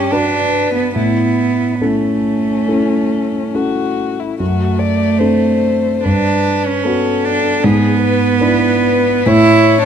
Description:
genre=classical, slow romantic movement for piano trio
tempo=66-81 BPM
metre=4/4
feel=rubato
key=unclear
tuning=A4 = 441 Hz
part: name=dark violin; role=melody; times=0.0-9.9 s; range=C#4 to D5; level=-19 LUFS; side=left 10 dB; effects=none
part: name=warm cello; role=second line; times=0.0-9.9 s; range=A3 to E4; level=-15 LUFS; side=right 6 dB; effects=none
part: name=dark concert grand piano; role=accompaniment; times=0.0-9.9 s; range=F#2 to B4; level=-17 LUFS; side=left 1 dB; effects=none
room=light reverb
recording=close, detailed microphones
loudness=-12 LUFS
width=side -8 dB against mid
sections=0.0-9.9 A section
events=none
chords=0.0 Gmaj7; 1.0 A; 4.4 D7/F#; 6.1 Gmaj7; 7.6 E7/G#; 9.3 A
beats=0.12 | 0.96 1.82 2.68 3.55 | 4.40 5.20 6.06 6.86 | 7.63 8.41 9.27

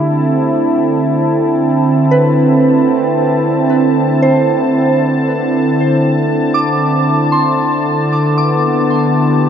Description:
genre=ambient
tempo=free time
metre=none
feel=none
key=unclear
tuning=A4 = 443 Hz
part: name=warm analog pad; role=sustained chords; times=0.0-9.5 s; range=D3 to A5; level=-12 LUFS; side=equal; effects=chorus
part: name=analog drone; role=drone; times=0.0-9.5 s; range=D3 to A3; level=-26 LUFS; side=right 1 dB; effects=none
part: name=soft synth bell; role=arpeggios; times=2.1-9.5 s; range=B4 to D6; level=-17 LUFS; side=right 1 dB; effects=chorus, tape echo
room=wet huge ambient reverb, RT60 8.4 s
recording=dark, warm production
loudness=-11 LUFS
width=side -8 dB against mid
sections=0.0-9.5 A section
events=none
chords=0.0 C69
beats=free time

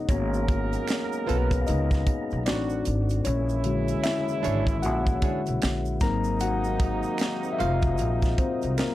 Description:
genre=R&B, neo-soul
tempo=76 BPM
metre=4/4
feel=swing 60% on 16ths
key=unclear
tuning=A4 = 440 Hz
part: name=mellow tine electric piano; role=accompaniment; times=0.0-8.9 s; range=D3 to A#5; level=-28 LUFS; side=left 4 dB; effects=plate reverb
part: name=tonewheel organ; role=sustained chords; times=0.0-8.9 s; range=F#3 to A#5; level=-38 LUFS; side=right 3 dB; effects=slow rotary speaker, overdrive, plate reverb
part: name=clear horn section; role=stabs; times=0.1-8.9 s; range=B#2 to A#4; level=-35 LUFS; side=right 6 dB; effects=tape echo, plate reverb
part: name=upright bass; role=bass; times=0.1-8.8 s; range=E#1 to C#2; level=-28 LUFS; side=equal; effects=none
part: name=tight funk drum kit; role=drums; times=0.1-8.9 s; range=hi-hat, kick drum, snare drum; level=-27 LUFS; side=equal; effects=none
part: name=tube shaker and finger snaps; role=percussion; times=0.1-8.9 s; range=none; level=-43 LUFS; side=right 8 dB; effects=none
part: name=flamenco guitar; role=second line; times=0.9-7.8 s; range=B3 to E#5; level=-33 LUFS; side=right 9 dB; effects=plate reverb
room=light reverb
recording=dark, warm production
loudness=-23 LUFS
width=side -15 dB against mid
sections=0.0-8.9 A section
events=tine electric piano solo 0.0-8.9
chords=0.1 G#m9; 2.5 Adim7; 3.2 A#7alt; 6.0 G#13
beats=| 0.09 0.88 1.67 2.46 | 3.25 4.04 4.83 5.62 | 6.41 7.20 7.99 8.78

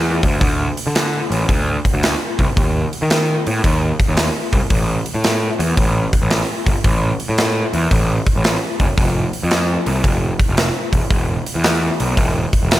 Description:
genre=blues rock power trio and southern rock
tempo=112 BPM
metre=4/4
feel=swing 67% on 8ths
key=A minor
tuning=A4 = 440 Hz
part: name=fuzz picked electric bass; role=bass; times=0.0-12.8 s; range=E1 to Eb3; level=-18 LUFS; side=equal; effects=overdrive
part: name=big rock drum kit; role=drums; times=0.2-12.8 s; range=hi-hat, kick drum, snare drum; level=-18 LUFS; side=equal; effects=none
room=light reverb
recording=none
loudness=-15 LUFS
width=side -15 dB against mid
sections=0.0-12.8 A section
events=none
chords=none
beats=| 0.42 0.95 1.49 2.03 | 2.56 3.10 3.64 4.17 | 4.71 5.24 5.77 6.30 | 6.84 7.37 7.90 8.44 | 8.97 9.50 10.03 10.57 | 11.10 11.64 12.17 12.71

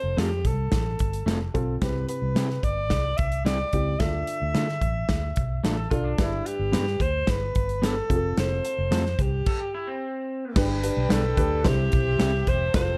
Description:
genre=uptempo 1960s-style soul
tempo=110 BPM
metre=4/4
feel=straight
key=C major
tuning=A4 = 445 Hz
part: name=breathy alto saxophone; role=melody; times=0.0-13.0 s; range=E4 to E5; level=-31 LUFS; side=equal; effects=slapback echo
part: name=dark upright piano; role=accompaniment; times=0.0-12.9 s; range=G2 to C5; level=-34 LUFS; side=equal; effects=none
part: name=vintage muted fingered electric bass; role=bass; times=0.0-13.0 s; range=E1 to D3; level=-30 LUFS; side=equal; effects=none
part: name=electric guitar at the edge of break-up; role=stabs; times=0.2-12.3 s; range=G3 to B4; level=-31 LUFS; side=equal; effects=none
part: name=natural country drum kit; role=drums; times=0.2-12.9 s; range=crash cymbal, hi-hat, kick drum, snare drum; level=-29 LUFS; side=equal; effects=none
part: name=electric guitar through a small old amp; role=riff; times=5.8-10.5 s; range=C4 to A4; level=-36 LUFS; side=equal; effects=tube saturation
part: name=warm studio violin section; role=second line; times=10.6-13.0 s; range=C4 to G5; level=-37 LUFS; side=equal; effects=none
room=small room ambience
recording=dark, warm production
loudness=-25 LUFS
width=mono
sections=0.0-10.6 A section; 10.6-13.0 B section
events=stop 9.5-10.6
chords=0.0 F; 1.8 C; 4.0 Dm; 6.2 G; 8.1 F; 9.5 N.C.; 10.6 G; 11.7 C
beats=0.18 0.72 1.27 | 1.81 2.36 2.91 3.45 | 4.00 4.54 5.09 5.64 | 6.18 6.73 7.28 7.83 | 8.37 8.92 9.46 10.01 | 10.56 11.10 11.65 12.20 | 12.74

